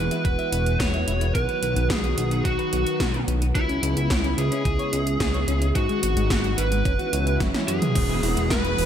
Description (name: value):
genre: synthwave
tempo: 109 BPM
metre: 4/4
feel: straight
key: B major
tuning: A4 = 439 Hz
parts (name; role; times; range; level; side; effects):
- lead guitar through a small cranked amp; melody; 0.0-8.9 s; E4 to C#5; -27 LUFS; right 2 dB; overdrive, tape echo
- lush unison pad; sustained chords; 0.0-8.9 s; C#3 to F#4; -29 LUFS; equal; chorus
- chorused synth bass; bass; 0.0-8.9 s; E1 to G#2; -25 LUFS; equal; sidechain pumping
- clean electric guitar; riff; 0.1-8.7 s; F#3 to E5; -33 LUFS; left 4 dB; wide subtle chorus, ping-pong delay
- 80s electronic pad drums; drums; 0.1-8.9 s; crash cymbal, hi-hat, snare drum, toms; -28 LUFS; right 1 dB; gated reverb on snare and toms, overdrive, gated reverb
- electronic kick drum; drums; 0.2-8.6 s; none; -26 LUFS; equal; overdrive
- swell and downlifter; sound effects; 7.0-8.9 s; none; -33 LUFS; right 3 dB; none
- thumb-piano-like synth pluck; arpeggios; 8.0-8.8 s; G#3 to E4; -33 LUFS; left 2 dB; chorus
- string machine, violins; second line; 8.5-8.9 s; B4; -28 LUFS; equal; ensemble chorus
room: light reverb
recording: none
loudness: -20 LUFS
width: side -9 dB against mid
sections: 0.0-8.0 A section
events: swell 7.0-8.0; drum fill 7.4-8.0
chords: 0.0 Eadd9; 1.4 B; 3.6 C#m7; 5.8 G#m7; 6.9 F#7sus4; 8.0 Eadd9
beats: 0.25 0.80 | 1.35 1.90 2.45 3.00 | 3.55 4.10 4.65 5.20 | 5.75 6.30 6.86 7.41 | 7.96 8.51